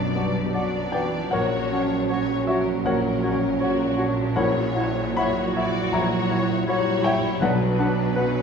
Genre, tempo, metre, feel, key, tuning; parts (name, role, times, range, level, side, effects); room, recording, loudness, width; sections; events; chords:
classical, romantic movement for piano and orchestra; 79 BPM; 4/4; rubato; A4 = 440 Hz
clear concert grand piano; melody; 0.0-8.4 s; A#1 to B5; -25 LUFS; left 2 dB
warm symphonic violin section; melody; 0.0-8.4 s; A#4 to D5; -33 LUFS; left 6 dB
rich symphonic violin section; second line; 0.0-8.4 s; C#4 to F#4; -33 LUFS; left 1 dB
rich symphonic viola section; accompaniment; 0.0-8.4 s; E3 to G3; -30 LUFS; right 5 dB
dark French horn section; sustained chords; 0.0-8.4 s; F#3 to E4; -30 LUFS; equal
clear symphonic double bass section; bass; 0.0-8.4 s; A#1 to B1; -32 LUFS; right 2 dB
rich symphonic cello section; bass; 0.0-8.4 s; A#2 to B2; -30 LUFS; right 5 dB
clear clarinet; second line; 0.2-8.3 s; D4 to F#4; -34 LUFS; equal
silver concert flute; second line; 0.2-8.2 s; F#5; -35 LUFS; left 2 dB
warm oboe; second line; 0.2-8.3 s; B4 to D5; -34 LUFS; right 2 dB
timpani; percussion; 7.4-8.4 s; B2; -36 LUFS; left 2 dB
wet scoring stage reverb, RT60 1.9 s; minimal, uncompressed stereo recording; -20 LUFS; side -6 dB against mid
0.0-8.4 A section
0.0 Bm; 1.3 F#/A#; 4.4 F#7/A#; 7.4 Bm